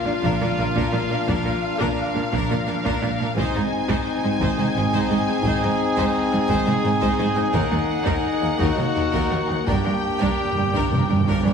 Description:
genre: cinematic, epic orchestral film score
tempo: 57 BPM (dotted quarters)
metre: 6/8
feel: straight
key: unclear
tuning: A4 = 439 Hz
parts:
  - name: clear symphonic violin section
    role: melody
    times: 0.0-11.5 s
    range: F5 to Ab5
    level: -30 LUFS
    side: left 1 dB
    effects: none
  - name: dark French horn section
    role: sustained chords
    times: 0.0-11.5 s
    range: Bb3 to Eb4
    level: -26 LUFS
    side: left 6 dB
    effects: none
  - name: clear trumpet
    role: stabs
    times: 0.0-11.5 s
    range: F4 to Ab4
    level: -27 LUFS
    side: equal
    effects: none
  - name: clear symphonic cello section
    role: bass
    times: 0.0-11.5 s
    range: Eb2 to Bb2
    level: -25 LUFS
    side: right 3 dB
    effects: none
  - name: bright symphonic violin section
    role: second line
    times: 0.1-11.5 s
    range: Bb4 to C5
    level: -33 LUFS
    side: left 3 dB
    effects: none
  - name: rich symphonic viola section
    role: accompaniment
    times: 0.1-11.5 s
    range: D4 to Eb4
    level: -30 LUFS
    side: right 1 dB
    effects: none
  - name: rich studio double bass section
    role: bass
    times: 0.2-11.5 s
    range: G1 to Eb2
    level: -28 LUFS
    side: right 3 dB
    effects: none
  - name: taiko ensemble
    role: drums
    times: 0.2-11.5 s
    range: none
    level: -30 LUFS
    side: equal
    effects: none
  - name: timpani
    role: percussion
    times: 9.7-11.5 s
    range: G2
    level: -24 LUFS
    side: right 2 dB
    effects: none
room: wet scoring stage reverb, RT60 1.7 s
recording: heavily compressed radio sound, multiband compression, studio ambience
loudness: -19 LUFS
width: side -6 dB against mid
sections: 0.0-11.5 A section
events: timpani fill 9.7-11.5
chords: 0.0 Bb; 3.4 Ab; 7.5 Ebm; 9.7 Gm

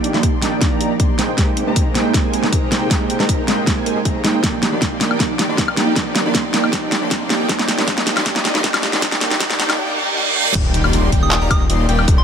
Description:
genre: future bass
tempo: 157 BPM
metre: 4/4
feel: half-time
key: Eb major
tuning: A4 = 440 Hz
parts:
  - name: mellow electric guitar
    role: accompaniment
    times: 0.0-9.8 s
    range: F3 to G4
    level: -24 LUFS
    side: right 3 dB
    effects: spring reverb, sidechain pumping, digital delay
  - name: clear studio string section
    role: sustained chords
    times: 0.0-9.8 s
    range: C3 to Eb5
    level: -32 LUFS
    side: left 2 dB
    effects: none
  - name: soft round pluck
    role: arpeggios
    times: 0.0-9.8 s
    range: C4 to Bb4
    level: -29 LUFS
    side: right 2 dB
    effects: none
  - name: big bright polysynth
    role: riff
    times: 0.0-12.2 s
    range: Bb3 to C6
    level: -21 LUFS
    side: right 1 dB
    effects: wide subtle chorus, sidechain pumping, digital delay
  - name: pop drum kit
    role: drums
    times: 0.0-12.2 s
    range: crash cymbal, handclaps, hi-hat, snare drum, woodblock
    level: -19 LUFS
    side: left 1 dB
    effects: none
  - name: riser, reverse cymbal and impact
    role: sound effects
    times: 1.3-12.1 s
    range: none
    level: -26 LUFS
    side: right 2 dB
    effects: none
  - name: electronic kick drum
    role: drums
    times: 0.2-12.2 s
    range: none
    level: -19 LUFS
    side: equal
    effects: none
  - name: wide detuned saw bass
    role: bass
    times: 10.6-12.2 s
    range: Eb1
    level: -18 LUFS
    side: equal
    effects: chorus, sidechain pumping
  - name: soft synth bell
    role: melody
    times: 11.2-12.2 s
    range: C6 to Eb6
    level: -24 LUFS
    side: right 2 dB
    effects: chorus, phaser, sidechain pumping, digital delay
room: light reverb, digital ambience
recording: high-pass filter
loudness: -14 LUFS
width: side -7 dB against mid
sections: 0.0-10.6 A section; 10.6-12.2 B section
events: build-up 0.0-10.6; drum fill 0.0-9.8; filter sweep on analog polysynth 0.0-10.6; filter sweep 0.0-10.6; reverse cymbal 9.8-10.6; drop 10.6-12.2; impact 10.6-12.1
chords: 0.0 Ebmaj7; 1.2 Abmaj9; 4.4 Ebmaj7; 7.5 Fm9; 10.6 Ebmaj7

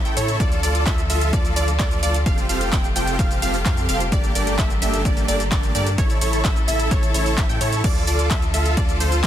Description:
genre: EDM, festival progressive house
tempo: 129 BPM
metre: 4/4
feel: straight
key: D minor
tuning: A4 = 437 Hz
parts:
  - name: clear studio string section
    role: sustained chords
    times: 0.0-9.3 s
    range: C3 to A4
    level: -29 LUFS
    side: left 1 dB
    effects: sidechain pumping
  - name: wide unison pluck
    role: arpeggios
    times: 0.0-9.3 s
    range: C5 to G5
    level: -28 LUFS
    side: right 1 dB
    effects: sidechain pumping, ping-pong delay
  - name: dense compressed supersaw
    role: riff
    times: 0.0-9.3 s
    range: Bb3 to G5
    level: -25 LUFS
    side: right 1 dB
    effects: sidechain pumping, ping-pong delay
  - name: saturated sub bass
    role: bass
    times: 0.0-9.3 s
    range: F1 to A2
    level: -24 LUFS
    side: equal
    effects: sidechain pumping
  - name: house drum kit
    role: drums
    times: 0.1-9.3 s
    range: crash cymbal, handclaps, hi-hat, ride cymbal, shaker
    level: -27 LUFS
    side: equal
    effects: overdrive
  - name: electronic kick drum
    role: drums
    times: 0.4-9.3 s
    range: none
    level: -22 LUFS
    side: equal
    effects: overdrive
room: light reverb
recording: dense, heavily limited modern master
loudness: -17 LUFS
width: side -11 dB against mid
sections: 0.0-7.8 A section; 7.8-9.3 A section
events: drop 0.0-7.8, 7.8-9.3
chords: 0.4 Dm; 2.3 Fadd9; 4.1 Gmadd9; 6.0 A; 7.8 Dm

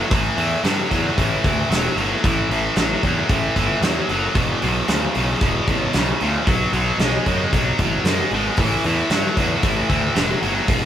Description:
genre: blues rock power trio and southern rock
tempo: 114 BPM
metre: 4/4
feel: straight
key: unclear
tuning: A4 = 439 Hz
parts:
  - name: tight distorted guitar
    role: riff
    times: 0.0-10.9 s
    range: E2 to G#3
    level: -20 LUFS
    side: equal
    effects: distortion
  - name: fuzz picked electric bass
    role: bass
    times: 0.1-10.9 s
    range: E1 to G2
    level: -24 LUFS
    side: equal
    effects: overdrive
  - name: big rock drum kit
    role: drums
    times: 0.1-10.9 s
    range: hi-hat, kick drum, snare drum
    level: -22 LUFS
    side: equal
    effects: none
room: light reverb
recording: band playing live in one room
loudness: -17 LUFS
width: side -10 dB against mid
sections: 0.0-10.9 A section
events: none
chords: 0.0 A5; 4.4 E5; 6.5 B5; 8.6 A5

